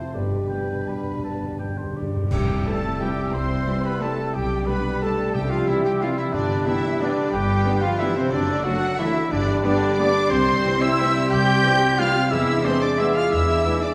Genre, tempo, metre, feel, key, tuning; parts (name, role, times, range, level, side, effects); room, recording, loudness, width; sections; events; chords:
classical, orchestral ballroom waltz; 156-196 BPM; 3/4; rubato; C major; A4 = 441 Hz
warm studio violin section; melody; 0.0-13.9 s; B4 to G6; -33 LUFS; equal
mellow clarinet; second line; 0.0-13.9 s; C4 to G5; -33 LUFS; equal
mellow oboe; second line; 0.0-13.9 s; A4 to B5; -36 LUFS; equal
warm studio violin section; second line; 0.0-13.9 s; C4 to G5; -36 LUFS; equal
mellow bassoon; accompaniment; 0.0-13.9 s; F#3 to A3; -30 LUFS; equal
mellow French horn section; sustained chords; 0.0-13.8 s; B2 to A4; -37 LUFS; equal
concert harp; arpeggios; 0.0-13.9 s; F2 to C6; -30 LUFS; equal
warm studio cello section; bass; 0.1-13.9 s; G2 to G4; -31 LUFS; equal
warm studio double bass section; bass; 0.1-13.6 s; F#1 to E2; -31 LUFS; equal
cymbal swell, clash cymbals and concert bass drum; percussion; 0.1-3.0 s; -34 LUFS; equal
timpani; percussion; 0.1-2.8, 5.3-6.8 s; G2 to C3; -33 LUFS; equal
warm studio viola section; accompaniment; 0.5-13.7 s; G3 to G4; -35 LUFS; equal
bright concert flute; second line; 2.3-13.9 s; C5 to G6; -33 LUFS; equal
warm trumpet; stabs; 2.3-13.9 s; C4 to G5; -31 LUFS; equal
bright trombone section; sustained chords; 2.7-13.8 s; D3 to B3; -37 LUFS; equal
wet recital hall reverb, RT60 1.3 s; heard from further back in the room; -22 LUFS; mono
0.0-2.3 A section; 2.3-13.9 B section
timpani fill 0.1-2.3; band accent 2.3-2.7
0.1 G; 2.3 C; 4.3 G/B; 5.4 C; 6.3 G; 8.3 D/F#; 9.3 G; 10.3 C; 12.3 E7